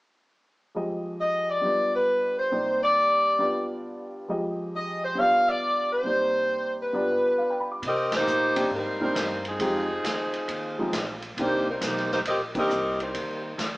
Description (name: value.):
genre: jazz, big band swing.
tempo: 136 BPM.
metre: 4/4.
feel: swing 66% on 8ths.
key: C minor from 7.8 s.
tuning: A4 = 440 Hz.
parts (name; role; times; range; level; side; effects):
warm upright piano; accompaniment; 0.7-12.7 s; F2 to D6; -30 LUFS; equal; none.
dark saxophone section; melody; 1.2-13.6 s; F3 to F5; -24 LUFS; equal; none.
upright bass; bass; 7.8-13.8 s; Bb1 to C3; -39 LUFS; equal; none.
swinging big-band drum kit; drums; 7.8-13.7 s; crash cymbal, hi-hat, kick drum, ride cymbal, snare drum; -32 LUFS; equal; none.
room: moderate stone room reverb, RT60 1.2 s.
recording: band playing live in one room, small speaker sound.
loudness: -23 LUFS.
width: side -21 dB against mid.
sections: 0.8-7.8 A section; 7.8-13.8 B section.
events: band accent 8.1, 12.5.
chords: 0.8 Fm7; 1.6 G7; 2.5 Cm7; 3.4 G7; 4.3 Fm7; 5.2 G7; 6.1 Cm7; 6.9 G7; 7.8 Cm7; 9.6 Fm7; 11.4 Cm7.